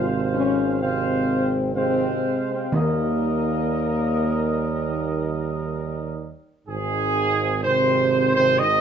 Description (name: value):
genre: classical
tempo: 62 BPM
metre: 4/4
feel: straight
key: Ab major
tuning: A4 = 440 Hz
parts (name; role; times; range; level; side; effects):
- dark trumpet section; melody; 0.0-8.8 s; Ab4 to F5; -24 LUFS; right 1 dB; none
- dark French horn section; sustained chords; 0.0-8.8 s; Eb3 to F4; -26 LUFS; left 4 dB; none
- dark trombone section; sustained chords; 0.0-8.8 s; Ab2 to Ab3; -28 LUFS; right 5 dB; none
- warm tuba; bass; 0.0-8.8 s; Ab1 to Eb2; -27 LUFS; right 5 dB; none
- timpani; percussion; 0.0-4.2 s; Ab2 to Eb3; -28 LUFS; right 1 dB; none
room: moderate large studio reverb, RT60 1.0 s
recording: nothing above 7.8 kHz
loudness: -20 LUFS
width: side -8 dB against mid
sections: 0.0-6.7 A section; 6.7-8.8 B section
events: none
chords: 0.0 Fm/Ab; 2.7 Eb; 6.7 Ab